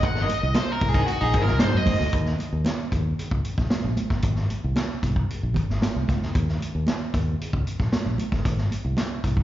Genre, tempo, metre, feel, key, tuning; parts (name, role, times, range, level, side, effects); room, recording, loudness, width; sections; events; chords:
funk; 114 BPM; 4/4; straight; Eb dorian; A4 = 441 Hz
octave-fuzz lead guitar; melody; 0.0-2.1 s; Gb4 to Gb5; -26 LUFS; equal; distortion, slapback echo
electric guitar at the edge of break-up; accompaniment; 0.0-2.0 s; Gb3 to C5; -32 LUFS; left 4 dB; tube saturation, slapback echo
fingered electric bass; bass; 0.0-9.4 s; G1 to Ab2; -25 LUFS; equal
vintage drum kit; drums; 0.0-9.4 s; hi-hat, kick drum, snare drum; -25 LUFS; equal
congas; percussion; 0.0-9.1 s; -31 LUFS; right 4 dB; slapback echo
group handclap; percussion; 0.6-1.7 s; -43 LUFS; left 3 dB
clear baritone saxophone; second line; 0.9-1.5 s; Eb4; -30 LUFS; right 2 dB; slapback echo
light reverb, small room ambience; live gig heard through the venue's PA, club reverb, nothing above 7.5 kHz; -22 LUFS; side -13 dB against mid
0.0-2.1 A section; 2.1-9.4 B section
lead electric guitar solo 0.0-2.1; band accent 0.0-2.1
0.0 Ab9; 2.1 Eb5; 4.2 Ab; 6.3 Eb5; 8.4 Ab